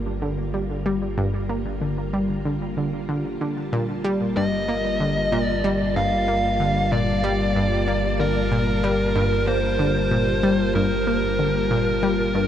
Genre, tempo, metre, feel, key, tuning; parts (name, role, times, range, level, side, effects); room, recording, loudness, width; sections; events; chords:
ambient, sequencer-driven space music; 94 BPM; 4/4; straight; G minor; A4 = 440 Hz
string machine, full ensemble; sustained chords; 0.0-12.5 s; G3 to A5; -27 LUFS; left 1 dB; ensemble chorus
round analog bass; bass; 0.0-12.5 s; G1; -29 LUFS; equal
analog pluck; riff; 0.2-12.5 s; G2 to Bb3; -24 LUFS; equal; chorus, analog delay
fuzz lead guitar; melody; 4.4-12.5 s; Bb4 to F5; -23 LUFS; equal; distortion, analog delay
wet huge ambient reverb, RT60 7.5 s; in a vast, echoing space, nothing above 10.5 kHz; -20 LUFS; side -10 dB against mid
0.0-12.5 A section
fade-in on string machine 0.0-12.5
0.0 Gm7